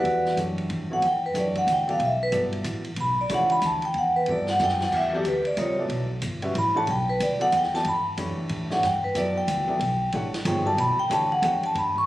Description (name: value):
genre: modal jazz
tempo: 185 BPM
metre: 3/4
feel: swing 64% on 8ths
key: E dorian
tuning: A4 = 440 Hz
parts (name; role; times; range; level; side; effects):
- vibraphone with medium mallets; melody; 0.0-12.1 s; F#4 to C#6; -23 LUFS; equal; plate reverb
- warm upright piano; accompaniment; 0.0-11.9 s; E3 to F#5; -32 LUFS; right 1 dB; none
- upright bass; bass; 0.0-12.1 s; G1 to A2; -30 LUFS; equal; none
- open jazz drum kit; drums; 0.0-12.0 s; crash cymbal, hi-hat, kick drum, ride cymbal, snare drum; -36 LUFS; equal; none
room: moderate club reverb, RT60 0.7 s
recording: recorded on a phone in the room, club reverb, compression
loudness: -22 LUFS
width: side -15 dB against mid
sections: 0.0-12.1 A section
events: vibraphone solo 0.0-12.1; drum fill 4.6-4.9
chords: 0.0 Em9